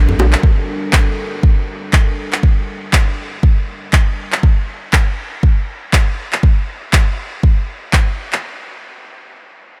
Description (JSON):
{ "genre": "afro house", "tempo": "120 BPM", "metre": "4/4", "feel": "swing 58% on 16ths", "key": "G minor", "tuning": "A4 = 438 Hz", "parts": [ { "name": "dark analog pad", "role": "sustained chords", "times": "0.0-4.4 s", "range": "G3 to Bb4", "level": "-30 LUFS", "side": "equal", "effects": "chorus, sidechain pumping" }, { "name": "electronic handclaps", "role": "drums", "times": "0.3-8.4 s", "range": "none", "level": "-23 LUFS", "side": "equal", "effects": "none" }, { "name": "electronic kick drum", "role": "drums", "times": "0.4-8.0 s", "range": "none", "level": "-14 LUFS", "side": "equal", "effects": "none" } ], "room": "light reverb, small room ambience", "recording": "none", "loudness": "-15 LUFS", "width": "mono", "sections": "0.0-8.4 A section", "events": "none", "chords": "0.0 Gm", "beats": "| 0.43 0.93 1.43 1.93 | 2.43 2.93 3.43 3.93 | 4.43 4.93 5.43 5.93 | 6.43 6.93 7.43 7.93" }